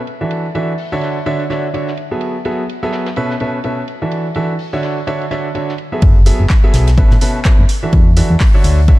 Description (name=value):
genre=piano house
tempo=126 BPM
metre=4/4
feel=swing 58% on 16ths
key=F# minor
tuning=A4 = 440 Hz
part: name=tight metal drum kit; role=drums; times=0.1-9.0 s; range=hi-hat, ride cymbal, snare drum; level=-34 LUFS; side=right 1 dB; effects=sidechain pumping on cymbals, high-pass filter on cymbals, low-pass filter on cymbals, sidechain pumping on hats, high-pass filter on hats, low-pass filter on hats, high-pass filter on snare, low-pass filter on snare, high-pass filter on room, low-pass filter on room
part: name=clear concert grand piano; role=riff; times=0.2-9.0 s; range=B2 to E5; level=-18 LUFS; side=right 1 dB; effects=vintage 12-bit sampler grit, sidechain pumping, ping-pong delay
part: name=solid FM bass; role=bass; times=6.0-8.9 s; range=F#1 to E2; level=-12 LUFS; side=equal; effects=tube saturation, sidechain pumping
part: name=electronic kick drum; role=drums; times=6.0-9.0 s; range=none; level=-10 LUFS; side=equal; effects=none
part: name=punchy analog drum machine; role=drums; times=6.3-8.8 s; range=handclaps, hi-hat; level=-24 LUFS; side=right 1 dB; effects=low-pass filter on hats, low-pass filter on snare, low-pass filter on room
room=small room ambience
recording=dark, warm production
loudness=-12 LUFS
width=side -17 dB against mid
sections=0.0-6.0 A section; 6.0-9.0 B section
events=drop 6.0-9.0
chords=0.3 E9sus4; 1.0 Dmaj9; 2.2 F#m11; 3.2 B9sus4; 4.1 E9sus4; 4.8 Dmaj9; 6.0 F#m11; 7.0 B9sus4; 7.9 E9sus4